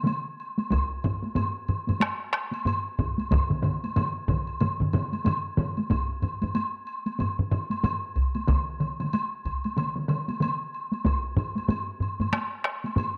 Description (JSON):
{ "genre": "japanese traditional, taiko drum ensemble", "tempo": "93 BPM", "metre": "4/4", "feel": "swing 60% on 16ths", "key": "none", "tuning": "none", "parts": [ { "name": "taiko ensemble", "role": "percussion", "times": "0.0-10.6 s", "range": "none", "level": "-32 LUFS", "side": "equal", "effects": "none" }, { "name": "taiko ensemble", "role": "percussion", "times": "0.1-13.1 s", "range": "none", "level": "-32 LUFS", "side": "equal", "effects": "none" }, { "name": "woodblock", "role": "percussion", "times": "0.1-13.2 s", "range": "none", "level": "-36 LUFS", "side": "equal", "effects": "none" }, { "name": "taiko ensemble", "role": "percussion", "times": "0.7-11.2 s", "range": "none", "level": "-30 LUFS", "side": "equal", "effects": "none" }, { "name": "taiko ensemble", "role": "percussion", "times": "1.0-13.1 s", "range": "none", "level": "-31 LUFS", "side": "equal", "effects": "none" } ], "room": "moderate spring reverb, RT60 1.3 s, small room ambience", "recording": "dry, gritty hardware recording, transformer saturation", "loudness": "-28 LUFS", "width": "mono", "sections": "0.0-13.2 A section", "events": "none", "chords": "none" }